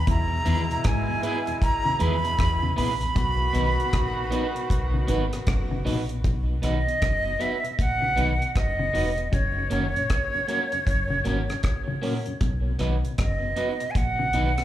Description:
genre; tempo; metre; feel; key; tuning
roots reggae; 78 BPM; 4/4; swing 62% on 16ths; B major; A4 = 440 Hz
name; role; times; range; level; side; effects
bright silver concert flute; melody; 0.0-14.6 s; C#5 to B5; -27 LUFS; right 2 dB; tape echo, slapback echo
deep dub fingered electric bass; bass; 0.0-14.6 s; E1 to G#2; -26 LUFS; equal; none
clear horn section; second line; 0.1-5.8 s; B2 to F#4; -34 LUFS; left 1 dB; tape echo, slapback echo
mellow electric guitar; arpeggios; 0.1-14.5 s; A#2 to D#3; -34 LUFS; left 5 dB; tremolo, slapback echo
deep reggae drum kit; drums; 0.1-14.6 s; hi-hat, kick drum, rim click; -26 LUFS; equal; none
mellow tonewheel organ; accompaniment; 0.3-14.6 s; E2 to E4; -35 LUFS; left 2 dB; overdrive, chorus vibrato, slow rotary speaker, tape echo
electric guitar at the edge of break-up; accompaniment; 0.5-14.5 s; A#3 to B4; -33 LUFS; right 4 dB; tape echo, slapback echo
room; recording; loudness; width
studio reverb; live gig heard through the venue's PA, club reverb; -22 LUFS; side -13 dB against mid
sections
0.0-6.2 A section; 6.2-14.6 B section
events
none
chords
0.1 E; 3.2 B; 9.3 F#; 12.4 B

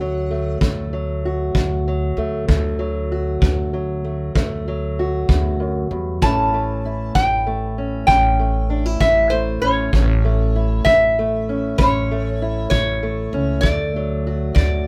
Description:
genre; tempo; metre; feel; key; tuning
acoustic country blues, solo or duo; 65 BPM (dotted quarters); 12/8; straight; D major; A4 = 440 Hz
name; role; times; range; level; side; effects
metal-body resonator slide guitar; melody; 0.0-0.6, 6.2-14.9 s; C5 to A5; -21 LUFS; equal; none
fingerpicked acoustic archtop guitar; accompaniment; 0.0-14.9 s; D2 to F#4; -26 LUFS; equal; none
upright bass; bass; 0.0-14.9 s; A1 to E2; -24 LUFS; equal; none
kick drum; drums; 0.6-14.7 s; none; -23 LUFS; equal; none
room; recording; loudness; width
light reverb; band playing live in one room; -19 LUFS; mono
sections
0.0-14.9 A section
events
none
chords
0.0 D; 6.2 A; 13.6 D

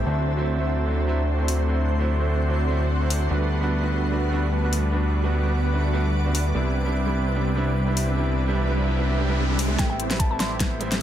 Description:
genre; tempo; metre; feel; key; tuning
future bass; 148 BPM; 4/4; swing 54% on 16ths, half-time; unclear; A4 = 439 Hz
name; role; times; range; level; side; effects
bright baby grand piano; accompaniment; 0.0-10.9 s; F#3 to A4; -30 LUFS; right 4 dB; sidechain pumping, ping-pong delay
shimmering ambient pad; sustained chords; 0.0-11.0 s; C4 to D6; -36 LUFS; equal; chorus, built-in reverb, phaser, sidechain pumping
dense compressed supersaw; riff; 0.0-11.0 s; G3 to D5; -28 LUFS; equal; sidechain pumping, low-pass filter, ping-pong delay
fat analog bass; bass; 0.0-11.0 s; A1 to D2; -23 LUFS; equal; sidechain pumping
dubstep drum kit; drums; 1.5-11.0 s; hi-hat, snare drum; -27 LUFS; left 2 dB; overdrive
riser; sound effects; 8.4-9.8 s; none; -33 LUFS; right 1 dB; none
mallet-like synth pluck; melody; 9.8-10.6 s; G5 to C6; -31 LUFS; left 1 dB; chorus, sidechain pumping, tape echo
electronic kick drum; drums; 9.8-10.7 s; none; -24 LUFS; equal; overdrive
room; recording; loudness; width
light reverb, digital ambience; none; -21 LUFS; side -11 dB against mid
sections
0.0-9.8 A section; 9.8-11.0 B section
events
riser 8.4-9.8; build-up 9.8-11.0; drum fill 9.8-11.0; filter sweep on synth pluck 9.8-11.0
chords
0.1 D7; 3.3 Gmaj7/D; 6.5 Cmaj9; 9.8 Am7

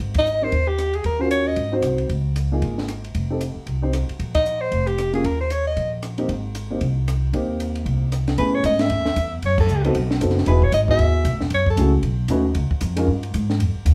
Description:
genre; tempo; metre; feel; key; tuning
jazz, small-group swing and bop; 229 BPM; 4/4; swing 59% on 8ths; unclear; A4 = 440 Hz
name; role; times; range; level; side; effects
upright bass; bass; 0.0-13.9 s; E1 to A2; -24 LUFS; equal; none
compact cocktail drum kit; drums; 0.0-13.9 s; crash cymbal, hi-hat, kick drum, ride cymbal, rim click, snare drum; -30 LUFS; equal; none
warm soprano saxophone; melody; 0.2-1.7, 4.3-5.9, 8.4-11.9 s; G4 to E5; -24 LUFS; equal; none
warm upright piano; accompaniment; 0.4-13.1 s; Ab3 to C5; -26 LUFS; equal; none
room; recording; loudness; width
wet studio reverb, RT60 0.6 s; heard from further back in the room; -21 LUFS; mono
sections
0.0-8.4 A section; 8.4-13.9 B section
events
band accent 0.1, 4.3, 9.6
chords
0.0 Abmaj7; 1.0 Ebm7; 1.6 Ab7; 2.1 Db69; 3.1 F7(no3); 4.2 Bb5; 5.2 Eb5; 6.3 Abmaj7; 8.4 Amaj7; 9.4 Gbm; 9.9 B7b9; 10.5 Emaj9; 11.5 Gbm7; 12.0 B9; 12.6 Db

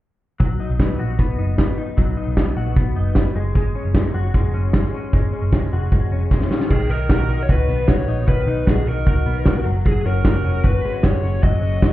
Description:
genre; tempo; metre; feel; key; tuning
jangly indie pop; 152 BPM; 4/4; straight; unclear; A4 = 440 Hz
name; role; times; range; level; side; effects
direct-recorded clean electric guitar; arpeggios; 0.4-11.9 s; D#3 to F#4; -26 LUFS; left 5 dB; ensemble chorus, plate reverb, tape echo
vintage muted picked electric bass; bass; 0.4-11.9 s; E#1 to C#2; -21 LUFS; equal; none
loose indie drum kit; drums; 0.4-11.9 s; crash cymbal, hi-hat, kick drum, snare drum; -19 LUFS; equal; none
smooth overdriven lead guitar; melody; 6.7-11.9 s; G#4 to D#5; -25 LUFS; equal; plate reverb
room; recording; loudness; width
little or no reverb; heard muffled through a wall, club reverb, EQ; -16 LUFS; side -15 dB against mid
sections
0.4-6.7 A section; 6.7-11.9 B section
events
drum fill 6.3-6.7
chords
0.4 B; 3.4 F#sus2; 6.7 B; 9.7 F#sus2

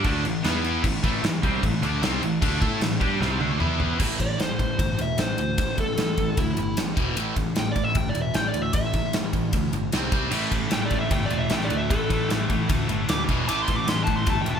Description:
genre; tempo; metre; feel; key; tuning
hard rock; 152 BPM; 4/4; straight; A minor; A4 = 438 Hz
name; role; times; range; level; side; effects
cranked stack guitar; riff; 0.0-14.6 s; E2 to A4; -30 LUFS; left 8 dB; overdrive, phaser
distorted electric guitar; riff; 0.0-14.6 s; E2 to A4; -31 LUFS; right 8 dB; overdrive
scooped high-gain guitar; riff; 0.0-4.0, 10.3-14.6 s; E2 to A4; -28 LUFS; left 1 dB; distortion
fuzz picked electric bass; bass; 0.0-14.6 s; E1 to A2; -29 LUFS; equal; overdrive
gated 80s drum kit; drums; 0.0-14.6 s; crash cymbal, kick drum, ride cymbal, snare drum, toms; -26 LUFS; equal; none
smooth overdriven lead guitar; melody; 4.2-14.6 s; E4 to D6; -28 LUFS; equal; none
room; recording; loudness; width
light reverb; band playing live in one room; -22 LUFS; side -7 dB against mid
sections
0.0-4.0 A section; 4.0-14.6 B section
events
drum fill 3.2-4.0; lead electric guitar solo 4.0-14.6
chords
0.4 E5; 0.8 Am; 3.6 E5; 4.0 Am; 7.0 E5; 7.2 A5; 9.9 C5; 10.3 A5; 13.3 E5; 13.5 A5

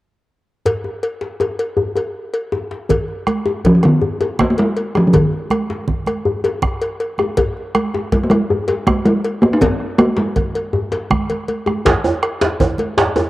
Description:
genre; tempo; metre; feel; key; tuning
west african traditional, West African drum ensemble; 107 BPM (dotted quarters); 12/8; straight; Ab major pentatonic; A4 = 437 Hz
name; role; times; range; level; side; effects
cowbell; percussion; 0.7-13.3 s; none; -22 LUFS; left 1 dB; none
djembe; percussion; 0.7-13.3 s; none; -21 LUFS; left 3 dB; none
bombo; percussion; 2.9-12.8 s; none; -23 LUFS; right 1 dB; none
congas; percussion; 2.9-13.3 s; none; -23 LUFS; right 3 dB; none
talking drum; melody; 3.7-10.7 s; Eb3 to Eb4; -15 LUFS; equal; cassette tape
djembe; percussion; 11.9-13.3 s; none; -17 LUFS; right 3 dB; none
room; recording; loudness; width
moderate spring reverb, RT60 2.4 s; home recording on cassette; -15 LUFS; side -16 dB against mid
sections
0.7-2.9 A section; 2.9-11.9 B section; 11.9-13.3 C section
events
drum fill 11.3-11.9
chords
none

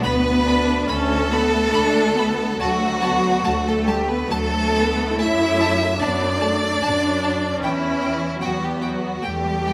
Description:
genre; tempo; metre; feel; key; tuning
classical, slow romantic movement for string orchestra; 65-76 BPM; 3/4; rubato; unclear; A4 = 441 Hz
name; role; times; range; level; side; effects
clear chamber violin section; melody; 0.0-9.7 s; G5 to B5; -33 LUFS; equal; none
clear chamber violin section; second line; 0.0-9.7 s; E4 to E5; -24 LUFS; equal; none
rich chamber viola section; accompaniment; 0.0-9.7 s; F#3 to D4; -28 LUFS; equal; none
clear studio double bass section; bass; 0.0-9.7 s; D2 to F#2; -28 LUFS; equal; none
warm chamber cello section; bass; 0.0-9.7 s; E3 to E4; -26 LUFS; equal; none
room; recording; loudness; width
moderate recital hall reverb, RT60 1.5 s; none; -20 LUFS; mono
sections
0.0-9.7 A section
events
none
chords
0.0 Bm/D; 2.6 D; 5.2 D/F#; 7.6 Em

